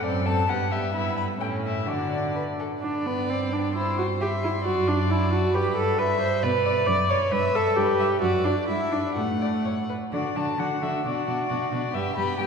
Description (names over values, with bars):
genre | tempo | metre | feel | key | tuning
quick classical-period movement for string quartet | 133 BPM | 2/4 | rubato | G major, D major from 6.4 s | A4 = 440 Hz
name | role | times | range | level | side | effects
dark violin | melody | 0.0-12.5 s | B4 to C6 | -32 LUFS | left 6 dB | none
warm violin | second line | 0.0-12.5 s | E4 to F#5 | -31 LUFS | left 2 dB | none
warm viola | accompaniment | 0.0-12.5 s | A3 to D5 | -25 LUFS | right 1 dB | none
rich cello | bass | 0.0-12.5 s | F#2 to D3 | -29 LUFS | right 2 dB | none
room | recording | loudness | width
wet cathedral reverb, RT60 4.1 s | recorded in a church or concert hall | -22 LUFS | side -6 dB against mid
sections
0.0-2.8 A section; 2.8-10.1 B section; 10.1-12.5 A section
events
none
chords
0.0 D7/F#; 0.5 G; 1.4 A; 1.9 D; 2.8 G; 3.8 C/G; 4.7 D7/F#; 5.6 G; 6.4 Bm; 7.3 Em/G; 8.2 D/F#; 8.7 G5; 9.2 D/A; 10.1 D; 11.0 Bm; 11.9 G6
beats
| 0.05 0.49 | 0.95 1.40 | 1.87 2.35 | 2.83 3.29 | 3.75 4.20 | 4.65 5.10 | 5.55 5.99 | 6.43 6.88 | 7.32 7.77 | 8.22 8.69 | 9.16 9.65 | 10.13 10.59 | 11.05 11.49 | 11.94 12.38